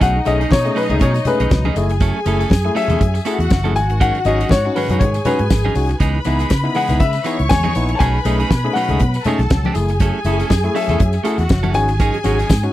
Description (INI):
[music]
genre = disco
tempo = 120 BPM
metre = 4/4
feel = swing 56% on 16ths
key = unclear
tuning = A4 = 440 Hz
[part]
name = warm baby grand piano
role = melody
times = 0.0-12.5 s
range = B4 to A5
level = -21 LUFS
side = left 4 dB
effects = none
[part]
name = clear studio string section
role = second line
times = 0.0-12.7 s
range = D#4 to C#6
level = -24 LUFS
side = equal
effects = none
[part]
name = barky tine electric piano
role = accompaniment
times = 0.0-12.7 s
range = G#2 to G#4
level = -23 LUFS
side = left 3 dB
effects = overdrive
[part]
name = clean electric guitar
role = accompaniment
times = 0.0-12.7 s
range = E3 to A4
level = -24 LUFS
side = right 7 dB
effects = none
[part]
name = fingered electric bass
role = bass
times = 0.0-12.7 s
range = F#1 to C#3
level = -19 LUFS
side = right 1 dB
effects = none
[part]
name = damped 70s drum kit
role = drums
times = 0.0-12.6 s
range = hi-hat, kick drum, snare drum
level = -16 LUFS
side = equal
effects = none
[part]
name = tambourine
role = percussion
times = 0.0-12.6 s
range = none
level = -37 LUFS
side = left 15 dB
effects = none
[part]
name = congas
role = percussion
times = 0.3-12.6 s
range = none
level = -26 LUFS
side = left 3 dB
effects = none
[sound]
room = little or no reverb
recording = dry, close 1970s-style studio recording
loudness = -14 LUFS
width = side -14 dB against mid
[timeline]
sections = 0.0-12.7 A section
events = none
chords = 0.0 B13; 1.8 F#m7; 3.8 G#7sus4; 6.0 C#m9; 8.0 B13; 9.7 F#m7; 11.7 G#7sus4